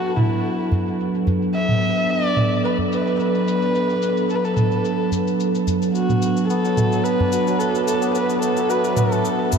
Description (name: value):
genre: organic downtempo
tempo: 109 BPM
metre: 4/4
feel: straight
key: B minor pentatonic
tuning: A4 = 437 Hz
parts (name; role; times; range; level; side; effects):
- dark kamancheh; melody; 0.0-9.6 s; E4 to E5; -23 LUFS; equal; tape echo
- warbly tape-like pad; sustained chords; 0.0-9.6 s; F#3 to E5; -21 LUFS; right 1 dB; chorus, built-in reverb
- santur; arpeggios; 0.0-1.3, 6.5-9.6 s; F#3 to B4; -26 LUFS; left 2 dB; tape echo
- electronic cabasa and toms; drums; 0.0-9.6 s; none; -24 LUFS; right 1 dB; low-pass filter on perc, low-pass filter on snare, low-pass filter on toms, low-pass filter on room
- udu; percussion; 0.7-9.6 s; none; -24 LUFS; equal; none
room: wet huge ambient reverb, RT60 8.5 s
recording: dreamy mix soaked in reverb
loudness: -18 LUFS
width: side -6 dB against mid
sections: 0.0-9.6 A section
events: filter sweep on drum 0.0-9.6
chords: 0.0 Bm7